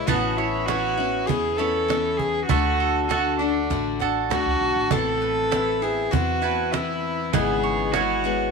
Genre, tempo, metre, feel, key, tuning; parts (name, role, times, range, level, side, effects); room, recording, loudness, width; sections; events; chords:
acoustic folk duo or small band; 99 BPM; 4/4; straight; A4 = 439 Hz
warm cello; melody; 0.0-8.5 s; D4 to A4; -24 LUFS; right 2 dB
picked steel-string acoustic guitar; accompaniment; 0.0-8.5 s; G#2 to F#4; -27 LUFS; left 14 dB
mandolin; arpeggios; 0.0-8.5 s; A3 to A5; -28 LUFS; right 10 dB
upright bass; bass; 0.0-8.5 s; G#1 to E2; -31 LUFS; left 1 dB
cajon; percussion; 0.1-8.1 s; -27 LUFS; right 8 dB
light reverb, small room ambience; 1960s-style stereo with parts hard left and right; -20 LUFS; side -4 dB against mid
0.0-8.5 A section
0.1 Aadd9; 2.5 D; 4.9 Amadd9; 7.3 E6/G#